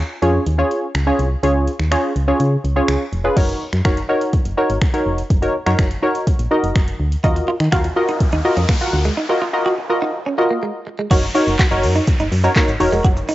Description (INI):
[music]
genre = dance-pop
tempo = 124 BPM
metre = 4/4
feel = straight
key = F# major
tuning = A4 = 440 Hz
[part]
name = wavetable chord stab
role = accompaniment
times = 0.0-13.3 s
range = C#4 to F#5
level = -18 LUFS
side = equal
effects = sidechain pumping, cassette tape
[part]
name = solid FM bass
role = bass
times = 0.0-13.2 s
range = E1 to D#3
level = -19 LUFS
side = equal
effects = sidechain pumping
[part]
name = smooth R&B drum kit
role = drums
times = 0.2-13.3 s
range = crash cymbal, finger snaps, handclaps, hi-hat, kick drum, shaker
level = -18 LUFS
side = equal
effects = cassette tape
[part]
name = direct-recorded clean electric guitar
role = riff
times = 7.2-13.3 s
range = G#3 to F#4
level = -23 LUFS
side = right 3 dB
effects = lush chorus, cassette tape
[part]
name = noise sweep and downlifter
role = sound effects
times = 7.6-13.3 s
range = none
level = -29 LUFS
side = equal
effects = none
[sound]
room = little or no reverb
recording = home recording on cassette, nothing above 7.8 kHz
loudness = -15 LUFS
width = side -16 dB against mid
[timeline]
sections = 0.0-3.4 A section; 3.4-11.1 B section; 11.1-13.3 C section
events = noise sweep 7.6-11.1; break 9.2-11.1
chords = 0.0 C#; 3.4 F#6; 7.2 D#madd9; 11.1 F#6